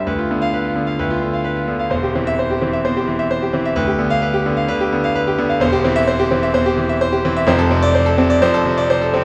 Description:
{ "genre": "classical, virtuoso piano study", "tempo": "129 BPM", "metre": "4/4", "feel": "rubato", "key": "C major", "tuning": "A4 = 436 Hz", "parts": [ { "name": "clear concert grand piano", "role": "solo", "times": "0.0-9.2 s", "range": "E1 to F5", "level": "-17 LUFS", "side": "equal", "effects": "none" } ], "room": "moderate recital hall reverb, RT60 1.5 s", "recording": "none", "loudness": "-17 LUFS", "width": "mono", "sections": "0.0-9.2 A section", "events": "none", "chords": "0.1 Bdim/D; 1.9 C/E; 3.8 G7/D; 5.6 C/E; 7.5 Dm7/F" }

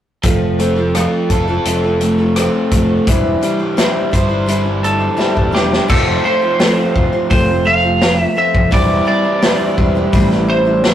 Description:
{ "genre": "folk rock and heartland rock", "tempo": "85 BPM", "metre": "4/4", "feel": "straight", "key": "F major", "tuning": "A4 = 440 Hz", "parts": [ { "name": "picked steel-string acoustic guitar", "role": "accompaniment", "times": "0.2-10.9 s", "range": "E3 to C5", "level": "-18 LUFS", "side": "left 1 dB", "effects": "none" }, { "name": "overdriven electric guitar", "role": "riff", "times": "0.2-10.9 s", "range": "D3 to C5", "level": "-19 LUFS", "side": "right 1 dB", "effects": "none" }, { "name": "picked electric bass", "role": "bass", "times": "0.2-10.9 s", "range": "E1 to A1", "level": "-19 LUFS", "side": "equal", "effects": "none" }, { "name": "vintage drum kit", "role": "drums", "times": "0.2-10.9 s", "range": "crash cymbal, hi-hat, kick drum, rim click, snare drum", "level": "-16 LUFS", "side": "equal", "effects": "none" }, { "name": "lightly driven lead guitar", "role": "melody", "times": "4.8-10.9 s", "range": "G4 to F5", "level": "-16 LUFS", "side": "right 2 dB", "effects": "none" } ], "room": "wet stone room reverb, RT60 1.0 s", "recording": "rough rehearsal-room recording, warm saturation", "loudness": "-12 LUFS", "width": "side -11 dB against mid", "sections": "0.2-5.9 A section; 5.9-10.9 B section", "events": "drum fill 5.2-5.9", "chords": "0.2 F; 3.1 Cadd9/E; 5.9 F; 8.7 Cadd9/E" }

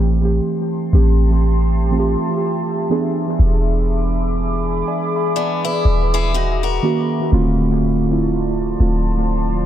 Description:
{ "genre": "contemporary R&B", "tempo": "61 BPM", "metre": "4/4", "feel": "swing 58% on 16ths", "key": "A minor", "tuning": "A4 = 445 Hz", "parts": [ { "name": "muted felt-like synth keys", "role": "accompaniment", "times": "0.0-9.7 s", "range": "D3 to B5", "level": "-19 LUFS", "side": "right 2 dB", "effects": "chorus, analog delay" }, { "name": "deep dark ambient pad", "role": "sustained chords", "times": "0.7-9.7 s", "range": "F3 to D6", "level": "-24 LUFS", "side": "left 1 dB", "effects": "chorus, built-in reverb" }, { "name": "clean 808-style bass", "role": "bass", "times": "0.0-9.7 s", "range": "D1 to A1", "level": "-17 LUFS", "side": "equal", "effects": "none" }, { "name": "picked steel-string acoustic guitar", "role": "arpeggios", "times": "5.4-7.3 s", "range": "B3 to A#4", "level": "-23 LUFS", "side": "left 9 dB", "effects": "analog delay" } ], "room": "digital ambience", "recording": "echo-heavy mix", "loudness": "-15 LUFS", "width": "side -11 dB against mid", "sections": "0.0-9.7 A section", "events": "none", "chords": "0.0 Am7; 2.9 E7; 6.3 D#m7; 7.3 Dm7" }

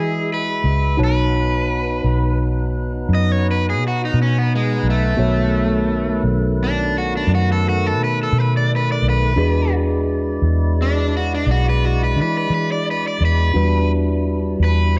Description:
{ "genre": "slow blues", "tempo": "57 BPM (dotted quarters)", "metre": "12/8", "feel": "straight", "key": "B mixolydian", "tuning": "A4 = 435 Hz", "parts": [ { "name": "crunchy overdriven guitar", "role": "melody", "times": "0.0-15.0 s", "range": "G#3 to D#5", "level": "-25 LUFS", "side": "equal", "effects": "spring reverb, plate reverb" }, { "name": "overdriven tine electric piano", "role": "accompaniment", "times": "0.0-15.0 s", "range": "G3 to A5", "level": "-28 LUFS", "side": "equal", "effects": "plate reverb" }, { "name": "tonewheel organ", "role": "sustained chords", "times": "0.0-15.0 s", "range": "D#3 to E5", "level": "-28 LUFS", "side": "equal", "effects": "slow rotary speaker, plate reverb" }, { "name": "vintage muted fingered electric bass", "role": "bass", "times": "0.0-15.0 s", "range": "B1 to E3", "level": "-21 LUFS", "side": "equal", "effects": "none" } ], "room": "light reverb", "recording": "dark, warm production", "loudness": "-18 LUFS", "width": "mono", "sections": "0.0-15.0 A section", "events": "overdriven electric guitar solo 0.0-15.0", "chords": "0.0 E; 1.0 B7; 9.4 E7; 13.6 Em7" }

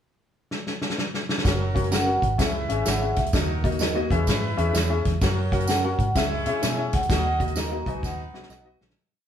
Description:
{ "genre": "uptempo 1960s-style soul", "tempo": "128 BPM", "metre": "4/4", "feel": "swing 65% on 8ths", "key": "C# dorian", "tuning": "A4 = 445 Hz", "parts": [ { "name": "natural country drum kit", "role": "drums", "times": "0.5-9.0 s", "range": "hi-hat, kick drum, snare drum", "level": "-25 LUFS", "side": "equal", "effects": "none" }, { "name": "clear horn section", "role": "second line", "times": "1.4-8.8 s", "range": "F#3 to D#5", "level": "-35 LUFS", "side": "right 1 dB", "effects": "none" }, { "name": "warm baby grand piano", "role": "accompaniment", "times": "1.4-8.9 s", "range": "B2 to F#5", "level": "-29 LUFS", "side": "left 4 dB", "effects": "none" }, { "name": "vibraphone with soft mallets", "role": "melody", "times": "1.5-8.8 s", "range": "C#5 to A#5", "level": "-29 LUFS", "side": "right 1 dB", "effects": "none" }, { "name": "vintage muted fingered electric bass", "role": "bass", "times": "1.5-8.9 s", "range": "F#1 to C#3", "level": "-27 LUFS", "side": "equal", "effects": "none" }, { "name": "tambourine", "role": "percussion", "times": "1.5-8.6 s", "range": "none", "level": "-36 LUFS", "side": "right 6 dB", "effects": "none" }, { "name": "semi-hollow electric guitar", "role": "stabs", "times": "1.9-8.7 s", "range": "C#4 to F#5", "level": "-31 LUFS", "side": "right 4 dB", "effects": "tube saturation, tremolo" } ], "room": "moderate stone room reverb, RT60 0.9 s", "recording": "band playing live in one room", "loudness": "-21 LUFS", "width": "side -9 dB against mid", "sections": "0.0-1.4 pickup bar; 1.4-9.0 pre-chorus", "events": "drum fill 0.5-1.4, 8.0-9.0; fade-out 7.1-9.0", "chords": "0.0 N.C.; 1.4 F#; 2.4 C#m; 3.3 D#m; 4.0 C#m/E; 5.2 F#; 6.2 C#m; 7.1 D#m; 7.8 B" }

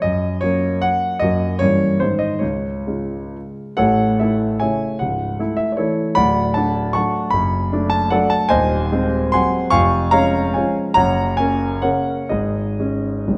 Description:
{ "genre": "classical, romantic triple-time dance for piano with dotted rhythms", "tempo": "117-163 BPM", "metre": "3/4", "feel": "rubato", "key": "Db major, A major from 3.8 s", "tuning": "A4 = 437 Hz", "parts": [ { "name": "warm concert grand piano", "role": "solo", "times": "0.0-13.4 s", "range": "C#1 to C#6", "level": "-19 LUFS", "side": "equal", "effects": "none" } ], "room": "moderate scoring stage reverb, RT60 1.7 s", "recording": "none", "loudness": "-19 LUFS", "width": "mono", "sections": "0.0-3.8 A section; 3.8-13.4 B section", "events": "none", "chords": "0.0 Gb; 1.2 Ebm/Gb; 1.6 Gdim7; 2.0 Ab; 2.4 Db; 3.8 A; 5.0 A/C#; 6.2 D; 7.3 D/F#; 8.5 Ab7/Eb; 9.7 Db/F; 11.0 Gb; 12.3 Absus4" }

